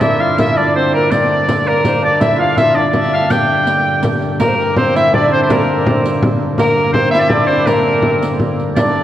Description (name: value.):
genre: medieval dance.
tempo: 110 BPM (dotted quarters).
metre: 6/8.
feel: straight.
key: unclear.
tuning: A4 = 439 Hz.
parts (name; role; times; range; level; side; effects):
clear shawm; melody; 0.0-9.0 s; Bb4 to G5; -16 LUFS; equal; none.
bright alto recorder; second line; 0.0-9.0 s; A4 to G5; -19 LUFS; left 2 dB; none.
hammered dulcimer; second line; 0.0-9.0 s; Bb3 to G4; -19 LUFS; right 2 dB; none.
pipe organ, flutes; drone; 0.0-9.0 s; G2 to D3; -23 LUFS; left 1 dB; none.
frame drum; percussion; 0.0-8.9 s; none; -18 LUFS; equal; none.
riq; percussion; 0.0-8.9 s; none; -25 LUFS; right 2 dB; none.
room: wet church reverb, RT60 3.0 s.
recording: worn, warbling old tape, cassette tape, warbly pitch drift.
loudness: -11 LUFS.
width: side -12 dB against mid.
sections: 0.0-4.4 A section; 4.4-9.0 B section.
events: none.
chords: none.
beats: | 0.01 0.57 | 1.12 1.67 | 2.22 2.77 | 3.31 3.86 | 4.41 4.96 | 5.50 6.05 | 6.59 7.14 | 7.68 8.22 | 8.77.